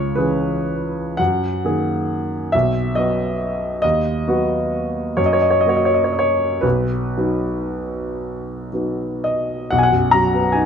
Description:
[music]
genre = classical, romantic nocturne for solo piano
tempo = 37-49 BPM (dotted quarters)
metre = 6/8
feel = rubato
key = B major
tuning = A4 = 440 Hz
[part]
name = warm grand piano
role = solo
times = 0.0-10.7 s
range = B1 to A#5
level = -17 LUFS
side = equal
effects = none
[sound]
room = moderate recital hall reverb, RT60 1.8 s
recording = close, detailed microphones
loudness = -17 LUFS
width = side -7 dB against mid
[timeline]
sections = 0.0-9.7 A section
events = none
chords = 0.0 C#m7; 1.2 F#69; 2.5 B; 3.8 B/D#; 5.2 F#; 6.6 B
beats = | 1.19 2.53 | 3.83 5.18 | 6.64 8.20 | 9.74

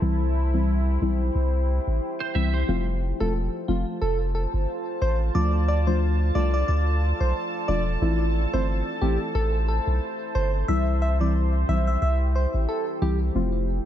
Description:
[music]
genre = dancehall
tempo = 90 BPM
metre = 4/4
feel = swing 56% on 16ths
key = C major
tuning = A4 = 440 Hz
[part]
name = deep mellow chord stab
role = accompaniment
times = 0.0-13.8 s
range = E3 to F4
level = -28 LUFS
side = left 2 dB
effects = chorus
[part]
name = deep dark ambient pad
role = sustained chords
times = 0.0-13.9 s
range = E4 to A5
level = -31 LUFS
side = equal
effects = chorus, built-in reverb
[part]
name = punchy sub bass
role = bass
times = 0.0-13.8 s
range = E1 to D2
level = -23 LUFS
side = equal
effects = none
[part]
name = clean electric guitar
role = arpeggios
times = 2.2-2.9 s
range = C5 to E5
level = -32 LUFS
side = right 7 dB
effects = ensemble chorus
[part]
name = soft struck synth lead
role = melody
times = 3.2-13.2 s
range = F4 to E5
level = -30 LUFS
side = equal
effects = chorus, ping-pong delay
[sound]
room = light reverb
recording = none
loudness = -22 LUFS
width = side -11 dB against mid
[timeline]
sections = 0.0-2.7 A section; 2.7-13.9 B section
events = none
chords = 0.0 C; 2.7 F; 5.3 Dm; 8.0 Am; 10.7 C; 13.3 F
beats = | 0.02 0.68 1.35 2.02 | 2.68 3.35 4.02 4.68 | 5.35 6.02 6.68 7.35 | 8.02 8.68 9.35 10.02 | 10.68 11.35 12.02 12.68 | 13.35

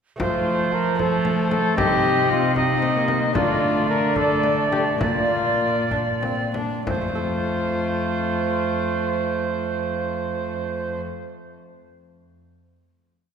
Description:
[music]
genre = classical, renaissance-style consort dance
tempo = 60-76 BPM (dotted quarters)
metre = 6/8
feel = straight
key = F mixolydian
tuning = A4 = 436 Hz
[part]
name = warm cornet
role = melody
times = 0.2-11.0 s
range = Eb4 to Bb4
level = -26 LUFS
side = left 4 dB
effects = none
[part]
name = bright tenor recorder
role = second line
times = 0.2-11.0 s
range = C5 to Eb5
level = -25 LUFS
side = right 3 dB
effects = none
[part]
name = lute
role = accompaniment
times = 0.2-11.3 s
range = F2 to A4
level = -30 LUFS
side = right 1 dB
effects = none
[part]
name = warm viola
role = accompaniment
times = 0.2-11.0 s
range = A3 to D4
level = -28 LUFS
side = equal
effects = none
[part]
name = dark cello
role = bass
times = 0.2-11.0 s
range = F2 to F3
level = -26 LUFS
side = right 1 dB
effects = none
[part]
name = frame drum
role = percussion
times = 0.2-7.2 s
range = none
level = -30 LUFS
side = left 2 dB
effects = none
[sound]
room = wet church reverb, RT60 2.5 s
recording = recorded in a church or concert hall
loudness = -20 LUFS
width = side -7 dB against mid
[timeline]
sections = 0.2-6.9 A section; 6.9-10.9 final chord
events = slowing down 2.6-6.9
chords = 0.2 F; 1.8 Cm; 3.4 Dm; 5.0 Bb; 6.9 F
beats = | 0.20 0.99 | 1.78 2.57 | 3.36 4.17 | 5.01 5.92 | 6.88 7.88 | 8.87 9.86

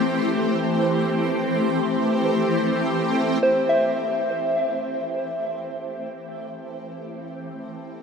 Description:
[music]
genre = ambient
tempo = free time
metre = none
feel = none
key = A minor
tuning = A4 = 442 Hz
[part]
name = shimmering ambient pad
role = sustained chords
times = 0.0-8.0 s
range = E3 to C5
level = -23 LUFS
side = equal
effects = chorus, built-in reverb, phaser
[part]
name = soft synth bell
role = arpeggios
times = 3.4-8.0 s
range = C5 to E5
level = -24 LUFS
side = equal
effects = chorus, diffuse ambient delay
[sound]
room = wet huge ambient reverb, RT60 7.5 s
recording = none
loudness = -20 LUFS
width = side -6 dB against mid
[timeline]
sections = 0.0-3.4 A section; 3.4-8.0 B section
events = none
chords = 0.0 Am7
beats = free time

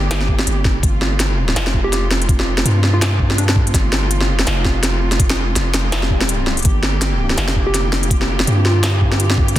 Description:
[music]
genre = half-time drum and bass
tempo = 165 BPM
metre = 4/4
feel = swing 57% on 16ths, half-time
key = unclear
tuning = A4 = 440 Hz
[part]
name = warm studio cello section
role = sustained chords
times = 0.0-9.6 s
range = C3 to G4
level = -25 LUFS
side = right 2 dB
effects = vintage 12-bit sampler grit, sidechain pumping
[part]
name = long sustained 808-style bass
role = bass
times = 0.0-9.6 s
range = F1 to G2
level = -18 LUFS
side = equal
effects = none
[part]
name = industrial drum kit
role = drums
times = 0.1-9.6 s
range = hi-hat, snare drum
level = -19 LUFS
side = equal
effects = none
[part]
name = electronic kick drum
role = drums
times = 0.3-9.6 s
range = none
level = -17 LUFS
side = equal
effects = none
[part]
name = soft struck synth lead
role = melody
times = 1.8-3.5, 7.7-9.2 s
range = D4 to G4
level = -26 LUFS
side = equal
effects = chorus, dub echo
[part]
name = swell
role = sound effects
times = 6.1-6.7 s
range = none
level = -29 LUFS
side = left 6 dB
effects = none
[part]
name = flickering grainy texture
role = texture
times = 7.2-9.6 s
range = F4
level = -30 LUFS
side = left 1 dB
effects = none
[sound]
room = light reverb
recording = dense, heavily limited modern master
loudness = -14 LUFS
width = side -13 dB against mid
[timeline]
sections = 0.0-9.6 A section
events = swell 6.1-6.7; kick drops out 6.3-6.7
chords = 0.0 Gm; 0.8 F; 6.7 Gm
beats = 0.11 0.47 | 0.83 1.20 1.56 1.92 | 2.29 2.65 3.02 3.38 | 3.74 4.11 4.47 4.83 | 5.20 5.56 5.92 6.29 | 6.65 7.01 7.38 7.74 | 8.11 8.47 8.83 9.20 | 9.56

